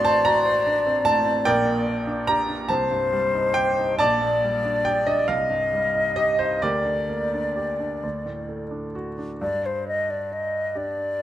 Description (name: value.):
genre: classical, romantic duo for flute and grand piano.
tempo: 43-50 BPM (dotted quarters).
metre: 6/8.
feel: rubato.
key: G minor.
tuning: A4 = 442 Hz.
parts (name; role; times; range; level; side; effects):
hollow concert flute; melody; 0.0-11.2 s; C5 to Eb5; -23 LUFS; left 2 dB; none.
clear grand piano; accompaniment; 0.0-11.2 s; A1 to C6; -24 LUFS; right 2 dB; none.
room: light reverb.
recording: close, detailed microphones.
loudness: -21 LUFS.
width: side -12 dB against mid.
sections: 0.0-9.4 A section; 9.4-11.2 B section.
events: none.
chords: 0.0 D7/A; 1.5 Gm/Bb; 2.7 Cm; 4.0 Gm/Bb; 5.3 Cm; 6.6 Gm/D; 8.0 D; 9.4 G5.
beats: 0.24 | 1.46 2.69 | 4.00 5.29 | 6.64 8.04 | 9.41 10.76.